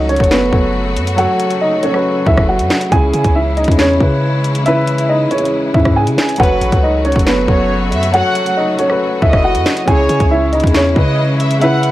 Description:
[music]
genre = hip hop, drill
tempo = 138 BPM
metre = 4/4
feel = half-time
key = C# minor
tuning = A4 = 440 Hz
[part]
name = dark upright piano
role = melody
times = 0.0-11.9 s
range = B3 to G#5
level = -16 LUFS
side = right 1 dB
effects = low-pass filter
[part]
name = dark grand piano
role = accompaniment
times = 0.0-11.9 s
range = C#3 to E5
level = -19 LUFS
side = left 2 dB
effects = low-pass filter
[part]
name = clear symphonic string section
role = sustained chords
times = 0.0-11.9 s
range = C#3 to F#4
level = -23 LUFS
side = left 1 dB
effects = none
[part]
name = long sustained 808-style bass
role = bass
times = 0.0-11.9 s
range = F#1 to C#3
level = -17 LUFS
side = equal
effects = none
[part]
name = drill drum kit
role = drums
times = 0.1-11.9 s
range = finger snaps, hi-hat, kick drum, rim click, snare drum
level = -15 LUFS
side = equal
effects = none
[part]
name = warm studio violin section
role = second line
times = 6.4-11.9 s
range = B4 to F#5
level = -20 LUFS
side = equal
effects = analog delay
[sound]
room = light reverb, studio ambience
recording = dry, gritty hardware recording, vinyl crackle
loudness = -11 LUFS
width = side -15 dB against mid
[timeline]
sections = 0.0-11.9 A section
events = none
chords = 0.0 F#m; 2.9 C#m; 6.4 F#m; 9.9 C#m

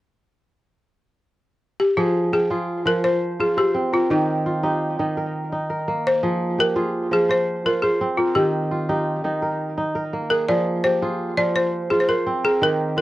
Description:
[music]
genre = west african traditional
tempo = 113 BPM (dotted quarters)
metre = 12/8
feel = straight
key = F minor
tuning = A4 = 440 Hz
[part]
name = balafon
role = melody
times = 1.8-13.0 s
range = Eb4 to D5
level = -20 LUFS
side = left 1 dB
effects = none
[part]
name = kora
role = arpeggios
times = 2.0-13.0 s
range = Eb3 to G5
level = -22 LUFS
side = right 1 dB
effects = tape echo
[sound]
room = moderate small room reverb, RT60 0.5 s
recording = worn, warbling old tape, cassette tape, warbly pitch drift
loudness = -19 LUFS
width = side -16 dB against mid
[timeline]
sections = 0.0-2.0 A section; 2.0-13.0 B section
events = none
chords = 0.0 N.C.; 2.0 Fm; 4.1 Eb; 6.2 Fm; 8.4 Eb; 10.5 Fm

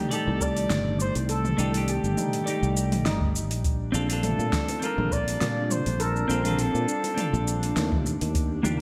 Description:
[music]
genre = sunset chillout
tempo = 102 BPM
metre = 4/4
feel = swing 54% on 16ths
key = unclear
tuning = A4 = 440 Hz
[part]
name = mellow flugelhorn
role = melody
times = 0.0-8.1 s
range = G4 to D5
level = -34 LUFS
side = equal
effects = digital delay
[part]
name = clean electric guitar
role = accompaniment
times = 0.0-8.8 s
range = Eb3 to D5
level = -33 LUFS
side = equal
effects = digital delay
[part]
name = airy breathy pad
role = sustained chords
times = 0.0-8.8 s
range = C3 to D5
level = -36 LUFS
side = equal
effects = none
[part]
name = steel pan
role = arpeggios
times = 0.0-8.0 s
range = A3 to A4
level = -39 LUFS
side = equal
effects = digital delay
[part]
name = deep house drum kit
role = drums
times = 0.1-8.8 s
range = hi-hat, shaker, snare drum, toms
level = -33 LUFS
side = equal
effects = overdrive, small room ambience, gated reverb
[part]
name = sustaining fretless electric bass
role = bass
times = 0.3-8.8 s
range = G1 to Bb2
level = -30 LUFS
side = equal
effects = ensemble chorus
[part]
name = electronic kick drum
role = drums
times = 0.4-8.5 s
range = none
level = -31 LUFS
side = equal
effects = small room ambience
[part]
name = bongos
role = percussion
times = 4.7-7.3 s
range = none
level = -43 LUFS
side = equal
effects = none
[sound]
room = moderate lush hall reverb, RT60 1.5 s, digital ambience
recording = bright 1980s-style digital production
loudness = -26 LUFS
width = mono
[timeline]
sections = 0.0-8.8 A section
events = none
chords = 0.0 Cm69; 3.4 Bbmaj9; 8.1 Ebmaj7

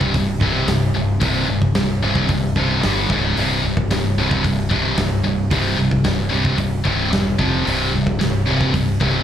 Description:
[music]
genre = heavy metal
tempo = 112 BPM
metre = 4/4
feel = straight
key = unclear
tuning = A4 = 439 Hz
[part]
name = high-gain distorted guitar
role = riff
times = 0.0-9.2 s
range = C2 to G3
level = -20 LUFS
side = left 5 dB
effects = distortion
[part]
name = high-gain distorted guitar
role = riff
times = 0.0-9.2 s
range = C2 to G3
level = -23 LUFS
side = right 10 dB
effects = distortion, slapback echo
[part]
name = growling fingered electric bass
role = bass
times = 0.0-9.2 s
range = C1 to G1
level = -22 LUFS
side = equal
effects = overdrive
[part]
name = big rock drum kit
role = drums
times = 0.0-9.1 s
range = hi-hat, kick drum, snare drum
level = -22 LUFS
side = equal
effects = none
[sound]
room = little or no reverb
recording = live gig heard through the venue's PA, club reverb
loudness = -16 LUFS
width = side -10 dB against mid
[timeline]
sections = 0.0-9.2 A section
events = none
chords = 0.0 C5; 2.8 G5; 3.1 Db5; 3.4 C5; 7.4 F5; 7.7 C5

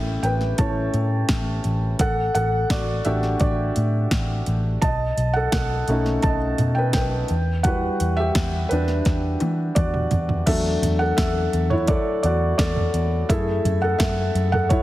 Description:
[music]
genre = piano-driven pop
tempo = 85 BPM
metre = 4/4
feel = straight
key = unclear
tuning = A4 = 440 Hz
[part]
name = felt-muted upright piano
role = accompaniment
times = 0.0-14.8 s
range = F#3 to A5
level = -23 LUFS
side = equal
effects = none
[part]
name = vintage muted picked electric bass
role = bass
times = 0.0-14.8 s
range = A1 to E3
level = -23 LUFS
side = equal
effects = none
[part]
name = deep house drum kit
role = drums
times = 0.2-14.8 s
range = crash cymbal, hi-hat, kick drum, snare drum, toms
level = -24 LUFS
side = equal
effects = overdrive
[sound]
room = light reverb, digital ambience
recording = heavily compressed radio sound, multiband compression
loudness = -19 LUFS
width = side -15 dB against mid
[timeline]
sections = 0.0-10.5 A section; 10.5-14.8 B section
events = felt piano solo 0.0-10.5, 10.5-14.8; drum fill 9.1-10.5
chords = 0.0 A; 2.0 D/A; 4.8 B7; 7.3 Emadd9; 10.5 E7sus4; 13.3 F#m7

